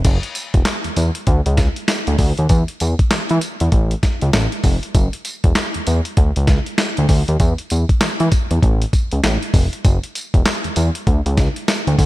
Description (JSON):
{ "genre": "R&B, new jack swing", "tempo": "98 BPM", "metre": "4/4", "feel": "swing 61% on 16ths", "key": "unclear", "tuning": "A4 = 440 Hz", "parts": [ { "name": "fat analog bass", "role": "bass", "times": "0.0-12.1 s", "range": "E1 to E3", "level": "-17 LUFS", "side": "equal", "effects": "none" }, { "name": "dusty soul sampler-style drum kit", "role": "drums", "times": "0.0-12.1 s", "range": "crash cymbal, handclaps, hi-hat, kick drum, snare drum, tambourine", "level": "-17 LUFS", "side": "equal", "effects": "none" } ], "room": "light reverb", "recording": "none", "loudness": "-15 LUFS", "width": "side -17 dB against mid", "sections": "0.1-12.1 A section", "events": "none", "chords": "none", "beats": "| 0.05 0.66 1.28 1.89 | 2.50 3.11 3.73 4.34 | 4.95 5.56 6.17 6.79 | 7.40 8.01 8.62 9.23 | 9.85 10.46 11.07 11.68" }